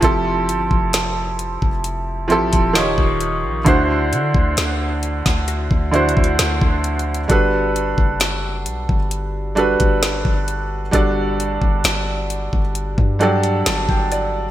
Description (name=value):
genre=contemporary R&B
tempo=66 BPM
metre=4/4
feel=straight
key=G major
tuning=A4 = 440 Hz
part: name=felt-muted upright piano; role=accompaniment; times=0.0-14.5 s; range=D3 to A5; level=-19 LUFS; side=right 2 dB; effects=none
part: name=warm 808-style bass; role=bass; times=0.0-14.5 s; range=Eb1 to D3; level=-23 LUFS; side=equal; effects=none
part: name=smooth R&B drum kit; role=drums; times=0.0-14.3 s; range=hi-hat, kick drum, snare drum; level=-19 LUFS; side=equal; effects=gated reverb
part: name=glassy wavetable pluck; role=texture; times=5.5-6.6 s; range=F#4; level=-37 LUFS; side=left 6 dB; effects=none
room=light reverb, digital ambience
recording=bright 1980s-style digital production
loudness=-16 LUFS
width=side -13 dB against mid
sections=0.0-14.5 A section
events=felt piano fill 12.8-14.5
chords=0.0 Fmaj7; 2.8 Eb9; 3.7 D7; 7.3 Gmaj7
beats=| 0.03 0.94 1.84 2.75 | 3.66 4.57 5.48 6.39 | 7.30 8.21 9.12 10.03 | 10.94 11.84 12.75 13.66